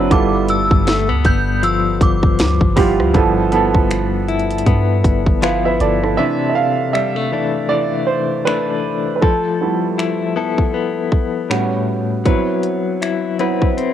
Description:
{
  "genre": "contemporary R&B",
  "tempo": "79 BPM",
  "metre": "4/4",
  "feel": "swing 58% on 16ths",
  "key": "C major",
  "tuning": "A4 = 439 Hz",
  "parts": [
    { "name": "synth chime", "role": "melody", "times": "0.0-2.7 s", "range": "D6 to G6", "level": "-20 LUFS", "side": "equal", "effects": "ensemble chorus, cassette tape" },
    { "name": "warm grand piano", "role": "accompaniment", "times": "0.0-13.9 s", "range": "E3 to F5", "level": "-19 LUFS", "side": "right 7 dB", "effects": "none" },
    { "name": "direct-recorded clean electric guitar", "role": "arpeggios", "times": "0.0-13.9 s", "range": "G2 to B4", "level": "-19 LUFS", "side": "left 7 dB", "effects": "tremolo" },
    { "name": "soft 808-style bass", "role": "bass", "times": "0.0-6.2 s", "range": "G1 to G2", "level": "-20 LUFS", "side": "equal", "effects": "none" },
    { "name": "trap drum kit", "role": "drums", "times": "0.1-13.9 s", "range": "finger snaps, hi-hat, kick drum, rim click, snare drum", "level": "-17 LUFS", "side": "equal", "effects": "none" }
  ],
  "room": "light reverb",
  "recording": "home recording on cassette",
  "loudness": "-14 LUFS",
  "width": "side -10 dB against mid",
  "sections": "0.0-3.1 A section; 3.1-6.2 B section; 6.2-13.9 C section",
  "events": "grand piano solo 6.2-13.9",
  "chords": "0.1 G13; 6.2 C69; 9.2 Fmaj9#11; 11.5 A13; 12.3 Cmaj7#11",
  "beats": "| 0.11 0.87 1.63 2.39 | 3.15 3.90 4.67 5.42 | 6.18 6.94 7.70 8.46 | 9.22 9.98 10.74 11.50 | 12.26 13.02 13.78"
}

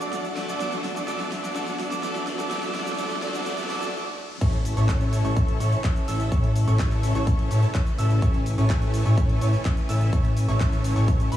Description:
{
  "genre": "EDM, festival progressive house",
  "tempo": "126 BPM",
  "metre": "4/4",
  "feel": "straight",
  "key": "A major",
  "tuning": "A4 = 436 Hz",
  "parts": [
    { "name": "electric guitar at the edge of break-up", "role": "accompaniment", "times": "0.0-3.9 s", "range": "F#3 to A4", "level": "-33 LUFS", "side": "left 2 dB", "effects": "sidechain pumping, tape echo" },
    { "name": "rich chamber string section", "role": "sustained chords", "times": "0.0-11.4 s", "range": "C#3 to G#5", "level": "-33 LUFS", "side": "equal", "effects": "sidechain pumping" },
    { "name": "bright grand piano", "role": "arpeggios", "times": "0.0-11.4 s", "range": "B5 to E6", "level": "-35 LUFS", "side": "right 5 dB", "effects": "sidechain pumping, tape echo" },
    { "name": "big supersaw lead", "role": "riff", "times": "0.0-11.4 s", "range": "A3 to E5", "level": "-31 LUFS", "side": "equal", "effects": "ensemble chorus, sidechain pumping, tape echo" },
    { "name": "big-room dance drum kit", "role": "drums", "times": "0.0-11.4 s", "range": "cabasa, crash cymbal, handclaps, hi-hat, snare drum", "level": "-35 LUFS", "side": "equal", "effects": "overdrive, studio reverb" },
    { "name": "riser and impact", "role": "sound effects", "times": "1.8-6.3 s", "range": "none", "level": "-40 LUFS", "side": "equal", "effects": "none" },
    { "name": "fat analog bass", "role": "bass", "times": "4.4-11.4 s", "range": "A1", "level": "-22 LUFS", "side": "equal", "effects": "sidechain pumping" },
    { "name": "electronic kick drum", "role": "drums", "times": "4.4-11.2 s", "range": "none", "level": "-23 LUFS", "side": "equal", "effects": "overdrive, studio reverb" }
  ],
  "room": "moderate lush hall reverb, RT60 2.2 s",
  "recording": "dreamy mix soaked in reverb, high-pass filter",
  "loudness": "-21 LUFS",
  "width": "side -12 dB against mid",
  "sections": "0.0-4.4 A section; 4.4-11.4 B section",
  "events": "build-up 0.0-4.4; drum fill 0.0-3.9; stop 3.9-4.4; drop 4.4-11.4; impact 4.4-6.3",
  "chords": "0.0 D; 0.6 Bm; 4.4 A",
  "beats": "0.13 | 0.60 1.08 1.56 2.03 | 2.51 2.98 3.46 3.94 | 4.41 4.89 5.37 5.84 | 6.32 6.79 7.27 7.75 | 8.22 8.70 9.18 9.65 | 10.13 10.60 11.08"
}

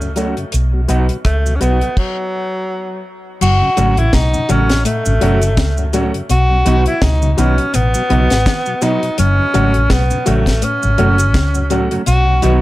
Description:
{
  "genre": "roots reggae",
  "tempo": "83 BPM",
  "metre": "4/4",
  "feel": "swing 57% on 16ths",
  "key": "F# dorian",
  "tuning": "A4 = 445 Hz",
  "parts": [
    { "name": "breathy tenor saxophone", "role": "melody", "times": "0.0-12.6 s", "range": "F#3 to F#4", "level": "-18 LUFS", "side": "equal", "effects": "dub echo, plate reverb" },
    { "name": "mellow tonewheel organ", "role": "accompaniment", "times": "0.0-12.5 s", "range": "F#2 to F#4", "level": "-26 LUFS", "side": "left 1 dB", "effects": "none" },
    { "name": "dark upright piano", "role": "stabs", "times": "0.0-12.6 s", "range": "F#4 to F#5", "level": "-23 LUFS", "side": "left 4 dB", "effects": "plate reverb" },
    { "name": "vintage muted fingered electric bass", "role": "bass", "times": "0.0-12.6 s", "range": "F#1 to C#2", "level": "-15 LUFS", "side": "equal", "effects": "none" },
    { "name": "cabasa", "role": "percussion", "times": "0.0-12.6 s", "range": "none", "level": "-27 LUFS", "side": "right 4 dB", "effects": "none" },
    { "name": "mellow electric guitar", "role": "accompaniment", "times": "0.2-12.6 s", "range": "F#3 to F#4", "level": "-22 LUFS", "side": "right 4 dB", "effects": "dub echo, plate reverb" },
    { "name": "deep reggae drum kit", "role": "drums", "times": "0.2-12.6 s", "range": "crash cymbal, hi-hat, kick drum, rim click, snare drum", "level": "-18 LUFS", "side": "equal", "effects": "none" },
    { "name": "mellow electric guitar", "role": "arpeggios", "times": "3.4-12.6 s", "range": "A2 to F#3", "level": "-22 LUFS", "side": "left 4 dB", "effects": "none" }
  ],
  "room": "light reverb",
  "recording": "none",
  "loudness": "-12 LUFS",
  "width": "side -17 dB against mid",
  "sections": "0.0-3.4 A section; 3.4-12.6 B section",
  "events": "stop 2.0-3.4",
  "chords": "0.0 F#m; 0.5 B; 3.4 F#m; 6.3 B; 9.2 F#m; 12.1 B",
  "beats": "| 0.53 1.25 1.97 2.69 | 3.41 4.13 4.85 5.58 | 6.30 7.02 7.74 8.46 | 9.18 9.90 10.62 11.34 | 12.06"
}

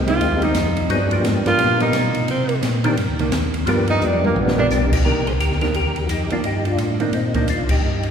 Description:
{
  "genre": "soul jazz organ trio",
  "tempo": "173 BPM",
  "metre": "4/4",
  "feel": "swing 62% on 8ths",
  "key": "C minor",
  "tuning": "A4 = 440 Hz",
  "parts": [
    { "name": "percussive tonewheel organ", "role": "melody", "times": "0.0-8.1 s", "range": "Eb3 to C5", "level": "-23 LUFS", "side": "left 2 dB", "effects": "slow rotary speaker, chorus vibrato" },
    { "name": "mellow tonewheel organ", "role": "bass", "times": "0.0-8.1 s", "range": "A#1 to C3", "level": "-22 LUFS", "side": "equal", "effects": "slow rotary speaker" },
    { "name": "clear tenor saxophone", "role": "melody", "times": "0.1-4.7 s", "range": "A#3 to F4", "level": "-22 LUFS", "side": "right 2 dB", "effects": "none" },
    { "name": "hollow-body jazz guitar", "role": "accompaniment", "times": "0.1-7.5 s", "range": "Eb3 to A#4", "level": "-25 LUFS", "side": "right 2 dB", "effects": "none" },
    { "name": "open jazz drum kit", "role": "drums", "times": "0.1-8.1 s", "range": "crash cymbal, hi-hat, kick drum, ride cymbal, snare drum, toms", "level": "-25 LUFS", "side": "equal", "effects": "none" }
  ],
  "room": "wet church reverb, RT60 2.8 s",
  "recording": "recorded in a church or concert hall",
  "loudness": "-16 LUFS",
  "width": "side -7 dB against mid",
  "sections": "0.0-5.1 A section; 5.1-8.1 B section",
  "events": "tenor saxophone solo 0.0-5.1; drum fill 4.0-4.7; band accent 7.7",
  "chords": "0.0 Abmaj7; 0.9 G7#9; 2.3 Cm9; 3.7 G7#9; 5.1 Cm9",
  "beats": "0.21 0.55 | 0.90 1.25 1.59 1.94 | 2.28 2.63 2.98 3.32 | 3.67 4.01 4.36 4.71 | 5.05 5.40 5.75 6.09 | 6.44 6.79 7.13 7.48 | 7.83"
}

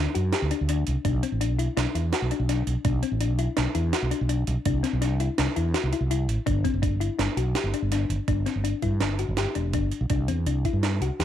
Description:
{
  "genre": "progressive instrumental, band music in an uneven meter",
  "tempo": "166 BPM",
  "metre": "5/4",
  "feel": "straight",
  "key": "unclear",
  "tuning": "A4 = 440 Hz",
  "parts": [
    { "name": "thumb-piano-like synth pluck", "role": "arpeggios", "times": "0.0-11.2 s", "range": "C4 to G4", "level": "-29 LUFS", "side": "left 11 dB", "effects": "chorus" },
    { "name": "fretless electric bass", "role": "bass", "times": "0.0-11.2 s", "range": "E1 to G2", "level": "-25 LUFS", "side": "right 1 dB", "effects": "none" },
    { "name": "breakbeat sampler-style drum kit", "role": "drums", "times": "0.2-11.2 s", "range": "hi-hat, kick drum, snare drum", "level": "-30 LUFS", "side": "right 6 dB", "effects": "none" }
  ],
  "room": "little or no reverb",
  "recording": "1960s-style stereo with parts hard left and right",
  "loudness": "-23 LUFS",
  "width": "side -10 dB against mid",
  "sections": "0.0-8.3 A section; 8.3-11.2 B section",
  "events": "none",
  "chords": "0.0 Dsus4; 1.1 Bm; 6.5 Gmaj7(no3); 8.3 G5; 10.1 C",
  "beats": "0.33 0.69 | 1.05 1.41 1.77 2.13 2.49 | 2.85 3.21 3.57 3.93 4.30 | 4.66 5.02 5.38 5.74 6.10 | 6.47 6.83 7.19 7.55 7.92 | 8.28 8.64 9.01 9.37 9.74 | 10.10 10.47 10.83 11.20"
}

